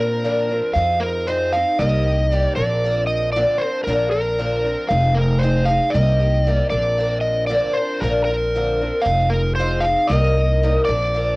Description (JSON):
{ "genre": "folk rock and heartland rock", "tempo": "116 BPM", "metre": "4/4", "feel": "straight", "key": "unclear", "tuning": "A4 = 439 Hz", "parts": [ { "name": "overdriven slide guitar", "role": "melody", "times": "0.0-11.4 s", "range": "Bb4 to F5", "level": "-20 LUFS", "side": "equal", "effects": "cassette tape" }, { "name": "picked twelve-string acoustic guitar", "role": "accompaniment", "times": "0.0-11.4 s", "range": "Bb2 to Bb4", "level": "-24 LUFS", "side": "left 1 dB", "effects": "cassette tape" }, { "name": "upright bass", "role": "bass", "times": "0.0-11.4 s", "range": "F1 to Bb2", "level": "-20 LUFS", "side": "equal", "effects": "none" } ], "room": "light reverb", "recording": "home recording on cassette", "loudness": "-16 LUFS", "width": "side -23 dB against mid", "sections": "0.0-11.4 A section", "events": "none", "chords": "0.0 Bbadd9; 0.8 Fm7; 1.8 Cm7; 2.6 Bbadd9; 4.9 Fm7; 5.9 Cm7; 6.7 Bbadd9; 9.1 Fm7; 10.1 Cm7" }